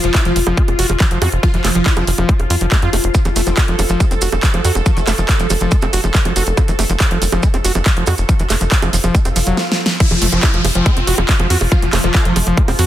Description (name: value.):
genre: psychedelic trance.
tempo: 140 BPM.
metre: 4/4.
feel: straight.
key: F major.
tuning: A4 = 439 Hz.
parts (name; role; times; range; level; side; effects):
dense compressed supersaw; melody; 0.0-2.0, 10.0-12.3 s; F3 to F4; -23 LUFS; equal; phaser, sidechain pumping, dub echo.
evolving wavetable pad; sustained chords; 0.0-12.9 s; F3 to A4; -24 LUFS; equal; chorus, built-in reverb, sidechain pumping.
overdriven acid bass; riff; 0.0-12.9 s; E3 to Gb4; -22 LUFS; right 1 dB; distortion, auto-pan, sidechain pumping, dub echo.
tight sequencer bass; bass; 0.0-12.9 s; F1 to F2; -18 LUFS; equal; none.
big-room dance drum kit; drums; 0.0-12.9 s; bongos, crash cymbal, handclaps, hi-hat, snare drum; -20 LUFS; right 2 dB; none.
electronic kick drum; drums; 0.1-12.7 s; none; -15 LUFS; equal; none.
maracas; percussion; 3.1-9.6 s; none; -27 LUFS; right 5 dB; none.
vowel-sweep wobble bass; second line; 3.5-5.3, 10.3-12.5 s; A3 to C4; -30 LUFS; left 3 dB; analog chorus, sidechain pumping, high-pass filter, dub echo.
swell and downlifter; sound effects; 9.3-12.9 s; none; -24 LUFS; equal; none.
room: little or no reverb.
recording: dense, heavily limited modern master.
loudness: -12 LUFS.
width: side -12 dB against mid.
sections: 0.0-10.0 A section; 10.0-12.9 B section.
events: swell 9.3-10.0; drum fill 9.6-10.0; drop 10.0-12.9.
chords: 0.0 F5.